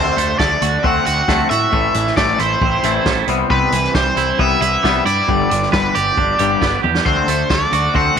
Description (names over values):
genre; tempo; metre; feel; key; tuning
indie rock; 135 BPM; 4/4; straight; G major; A4 = 440 Hz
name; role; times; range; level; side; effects
cranked stack guitar; melody; 0.0-8.2 s; B4 to F#5; -18 LUFS; left 2 dB; overdrive, slapback echo
twangy electric guitar; riff; 0.0-8.2 s; G2 to C4; -22 LUFS; left 14 dB; wide subtle chorus
twelve-string electric guitar; riff; 0.0-8.2 s; G2 to G4; -20 LUFS; right 13 dB; wide subtle chorus, slapback echo
fuzz picked electric bass; bass; 0.0-8.2 s; G1 to A2; -22 LUFS; equal; overdrive
vintage drum kit; drums; 0.2-8.2 s; hi-hat, kick drum, snare drum, toms; -21 LUFS; equal; none
room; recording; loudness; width
studio reverb; 1960s-style stereo with parts hard left and right; -13 LUFS; side -7 dB against mid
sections
0.0-8.2 A section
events
drum fill 6.8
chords
0.0 D7; 1.7 Am; 3.3 Cmaj7; 5.3 G; 7.1 D7